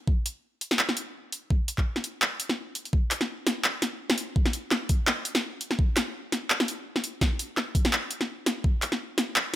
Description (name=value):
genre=drum and bass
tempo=168 BPM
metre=4/4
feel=swing 55% on 16ths, half-time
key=none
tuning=none
part: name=electronic kick drum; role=drums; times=0.1-8.7 s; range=none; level=-24 LUFS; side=equal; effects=overdrive
part: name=drum and bass drum kit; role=drums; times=0.3-9.4 s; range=handclaps, hi-hat, snare drum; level=-26 LUFS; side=equal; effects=overdrive
room=light reverb, digital ambience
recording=none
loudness=-25 LUFS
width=side -14 dB against mid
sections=0.0-2.9 A section; 2.9-9.6 A section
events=drop 0.0-2.9, 2.9-9.6; kick drops out 2.2-2.9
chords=none